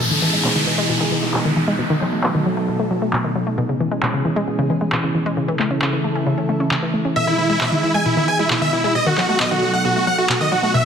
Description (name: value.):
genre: uplifting trance.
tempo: 134 BPM.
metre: 4/4.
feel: straight.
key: unclear.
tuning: A4 = 438 Hz.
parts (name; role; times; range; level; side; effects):
lush unison pad; sustained chords; 0.0-10.8 s; B2 to A4; -22 LUFS; right 1 dB; chorus.
wide unison pluck; arpeggios; 0.0-10.8 s; B2 to C#4; -22 LUFS; left 2 dB; digital delay.
big-room dance drum kit; drums; 0.0-10.4 s; crash cymbal, handclaps; -25 LUFS; equal; overdrive, low-pass filter on hats, low-pass filter on perc, low-pass filter on toms, low-pass filter on snare, low-pass filter on cymbals.
downlifter; sound effects; 0.0-3.6 s; none; -23 LUFS; equal; none.
big supersaw lead; melody; 7.2-10.8 s; E4 to G#5; -18 LUFS; right 1 dB; cassette tape, digital delay.
room: moderate lush hall reverb, RT60 2.1 s.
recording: dense, heavily limited modern master.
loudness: -16 LUFS.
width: side -7 dB against mid.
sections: 0.0-10.8 A section.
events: filter sweep on drum 0.0-10.8; filter sweep on synth arpeggio sound 0.0-10.8.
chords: 0.0 Emaj7; 1.8 B7; 3.6 C#m7; 5.4 A; 7.2 Emaj7; 9.0 B7.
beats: | 0.00 0.45 0.89 1.34 | 1.79 2.24 2.68 3.13 | 3.58 4.03 4.47 4.92 | 5.37 5.82 6.27 6.71 | 7.16 7.61 8.06 8.51 | 8.95 9.40 9.85 10.30 | 10.74.